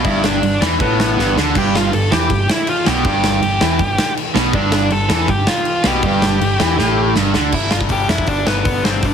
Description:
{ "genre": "punk rock", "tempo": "160 BPM", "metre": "4/4", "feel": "straight", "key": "G mixolydian", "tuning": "A4 = 440 Hz", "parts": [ { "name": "dark smooth lead guitar", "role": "melody", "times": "0.0-9.1 s", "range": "B3 to A5", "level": "-20 LUFS", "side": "equal", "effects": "overdrive, tape echo" }, { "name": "crunchy overdriven guitar", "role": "riff", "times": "0.0-7.5 s", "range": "G2 to E3", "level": "-22 LUFS", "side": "right 1 dB", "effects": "none" }, { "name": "distorted electric guitar", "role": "riff", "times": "0.0-7.5 s", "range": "G2 to E3", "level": "-21 LUFS", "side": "right 10 dB", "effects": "overdrive" }, { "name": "overdriven electric guitar", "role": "riff", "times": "0.0-9.1 s", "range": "G2 to G3", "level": "-22 LUFS", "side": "left 12 dB", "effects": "none" }, { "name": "picked electric bass", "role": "bass", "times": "0.0-9.1 s", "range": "G1 to F2", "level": "-21 LUFS", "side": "equal", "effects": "none" }, { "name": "big rock drum kit", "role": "drums", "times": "0.0-9.1 s", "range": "crash cymbal, hi-hat, kick drum, snare drum, splash cymbal", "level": "-19 LUFS", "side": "equal", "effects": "none" } ], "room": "light reverb", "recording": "heavily compressed radio sound", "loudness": "-13 LUFS", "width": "side -7 dB against mid", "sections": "0.0-7.5 A section; 7.5-9.1 B section", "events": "drum fill 1.2-1.5, 6.8-7.5", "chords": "0.0 G" }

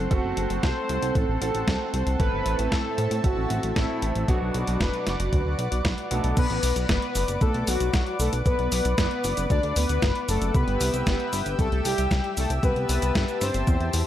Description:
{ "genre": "italo disco", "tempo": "115 BPM", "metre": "4/4", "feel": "straight", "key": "unclear", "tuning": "A4 = 440 Hz", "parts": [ { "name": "lush unison pad", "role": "sustained chords", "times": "0.0-14.1 s", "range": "C4 to E6", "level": "-31 LUFS", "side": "equal", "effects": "chorus" }, { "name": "bright grand piano", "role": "stabs", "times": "0.0-6.3 s", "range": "A2 to A4", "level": "-33 LUFS", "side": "right 3 dB", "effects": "none" }, { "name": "chorused synth bass", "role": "bass", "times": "0.0-14.0 s", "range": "F#1 to A2", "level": "-27 LUFS", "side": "equal", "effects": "none" }, { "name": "analog synth brass", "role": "melody", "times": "0.1-14.1 s", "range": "F#3 to D5", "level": "-28 LUFS", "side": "left 1 dB", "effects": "chorus, tape echo" }, { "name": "clean 12-bit digital drum machine", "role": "drums", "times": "0.1-14.0 s", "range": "cabasa, crash cymbal, hi-hat, snare drum", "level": "-30 LUFS", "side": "equal", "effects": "none" }, { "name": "electronic kick drum", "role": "drums", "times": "0.1-13.8 s", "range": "none", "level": "-24 LUFS", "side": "equal", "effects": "none" } ], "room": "light reverb, digital ambience", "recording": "dark, warm production", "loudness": "-22 LUFS", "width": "side -12 dB against mid", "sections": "0.0-6.4 A section; 6.4-14.1 B section", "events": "none", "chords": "0.0 F#dim; 2.2 Am; 4.3 Bm; 10.5 C" }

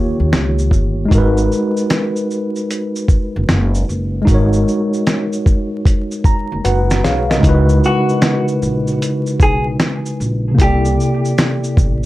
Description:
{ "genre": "lo-fi hip hop", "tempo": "76 BPM", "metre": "4/4", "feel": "swing 66% on 16ths", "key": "unclear", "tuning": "A4 = 440 Hz", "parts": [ { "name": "tine electric piano", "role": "accompaniment", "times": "0.0-12.1 s", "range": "C3 to A#5", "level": "-17 LUFS", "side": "equal", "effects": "medium stereo tremolo, low-pass filter" }, { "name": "upright bass", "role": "bass", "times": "0.0-12.1 s", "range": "F#1 to D#2", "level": "-17 LUFS", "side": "equal", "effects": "none" }, { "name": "dusty soul sampler-style drum kit", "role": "drums", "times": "0.3-12.1 s", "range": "hi-hat, kick drum, shaker, snare drum", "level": "-15 LUFS", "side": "equal", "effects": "vintage 12-bit sampler grit" }, { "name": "vintage hollow-body jazz guitar", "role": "melody", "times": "7.9-12.1 s", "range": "F#4 to G#4", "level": "-20 LUFS", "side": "left 1 dB", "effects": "low-pass filter, analog delay" } ], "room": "moderate small room reverb, RT60 0.5 s", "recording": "vinyl crackle", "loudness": "-13 LUFS", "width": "side -16 dB against mid", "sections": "0.0-7.4 A section; 7.4-12.1 B section", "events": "tine electric piano fill 5.8-7.4; drum fill 6.6-7.4", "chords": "0.0 D#7; 1.1 G#m9; 7.4 C#m11; 10.6 C13" }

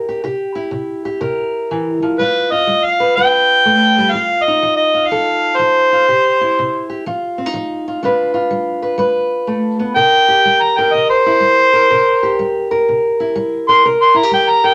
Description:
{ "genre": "acoustic country blues, solo or duo", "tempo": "123 BPM", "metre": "4/4", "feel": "swing 65% on 8ths", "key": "C mixolydian", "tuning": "A4 = 440 Hz", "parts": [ { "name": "fingerpicked old ladder-braced acoustic guitar", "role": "accompaniment", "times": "0.0-14.7 s", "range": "C3 to B4", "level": "-19 LUFS", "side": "equal", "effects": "none" }, { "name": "overdriven harmonica", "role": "melody", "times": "2.2-14.7 s", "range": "B4 to C6", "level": "-14 LUFS", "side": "equal", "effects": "none" } ], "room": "wet studio reverb, RT60 0.6 s", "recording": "none", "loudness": "-14 LUFS", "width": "mono", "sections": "0.0-10.0 A section; 10.0-14.7 B section", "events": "harmonica solo 10.0-14.7", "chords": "0.0 C7; 2.2 G7; 4.1 F7; 6.1 C; 7.0 F5; 8.0 G7; 10.0 C7" }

